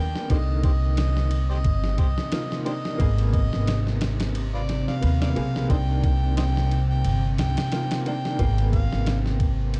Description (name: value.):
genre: trip hop.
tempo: 89 BPM.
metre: 4/4.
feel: swing 56% on 16ths.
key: C minor.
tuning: A4 = 440 Hz.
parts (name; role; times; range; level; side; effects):
overdriven harmonica; melody; 0.0-9.2 s; F4 to G5; -36 LUFS; equal; dub echo.
warm upright piano; accompaniment; 0.0-9.8 s; D3 to Cb5; -35 LUFS; equal; tremolo.
warm chamber string section; sustained chords; 0.0-9.8 s; C3 to D4; -32 LUFS; equal; none.
upright bass; bass; 0.0-9.8 s; G1 to Eb2; -26 LUFS; equal; none.
dusty soul sampler-style drum kit; drums; 0.2-9.8 s; kick drum, ride cymbal, snare drum; -29 LUFS; equal; none.
room: small room reverb.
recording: dark, warm production.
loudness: -23 LUFS.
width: mono.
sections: 0.0-9.8 A section.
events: none.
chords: 0.3 Cm7; 3.0 Abmadd9; 5.7 Cm7; 8.4 Abmadd9.